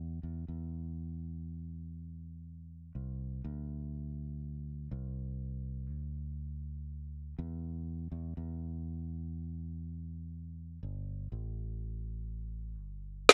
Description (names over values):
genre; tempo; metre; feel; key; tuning
pop ballad; 61 BPM; 4/4; straight; unclear; A4 = 440 Hz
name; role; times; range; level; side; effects
fingered electric bass; bass; 0.0-13.3 s; G1 to E2; -42 LUFS; equal; none
electronic snare drum; drums; 13.3 s; none; -14 LUFS; equal; none
room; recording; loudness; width
digital ambience; none; -41 LUFS; mono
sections
0.0-13.3 A section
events
none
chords
none